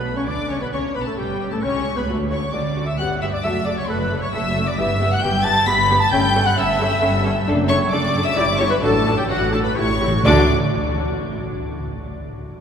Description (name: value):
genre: quick classical-period movement for symphony orchestra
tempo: 133 BPM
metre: 3/4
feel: straight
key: D major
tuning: A4 = 440 Hz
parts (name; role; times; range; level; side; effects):
- clear studio violin section; melody; 0.0-10.5 s; F#5 to B6; -25 LUFS; left 4 dB; none
- clear oboe; second line; 0.0-10.4 s; F#4 to B5; -27 LUFS; right 2 dB; none
- dark clarinet; second line; 0.0-10.4 s; F#4 to B5; -27 LUFS; left 2 dB; none
- mellow hollow silver concert flute; second line; 0.0-10.5 s; F#4 to B5; -27 LUFS; left 1 dB; none
- rich studio violin section; second line; 0.0-10.5 s; F#4 to B5; -30 LUFS; left 2 dB; none
- clear studio viola section; accompaniment; 0.0-10.5 s; G3 to A4; -27 LUFS; equal; none
- mellow French horn section; sustained chords; 0.0-10.5 s; F#3 to G4; -28 LUFS; left 4 dB; none
- rich studio cello section; bass; 0.0-10.5 s; F#2 to D3; -26 LUFS; right 1 dB; none
- rich studio double bass section; bass; 0.0-10.5 s; F#1 to D2; -25 LUFS; right 2 dB; none
- timpani; percussion; 2.1-2.7, 9.8-10.5 s; A2 to D3; -28 LUFS; left 1 dB; none
room: wet cathedral reverb, RT60 5.8 s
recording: recorded in a church or concert hall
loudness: -17 LUFS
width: side -7 dB against mid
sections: 0.0-10.2 A section; 10.2-11.7 B section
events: timpani fill 9.8-10.2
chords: 0.3 Bmadd9; 0.7 A7; 2.1 D; 3.0 G; 3.4 Bm11/F#; 4.8 Em/G; 6.1 A7/G; 7.5 D/F#; 8.4 Em7/G; 8.8 D/A; 9.8 A7; 10.2 D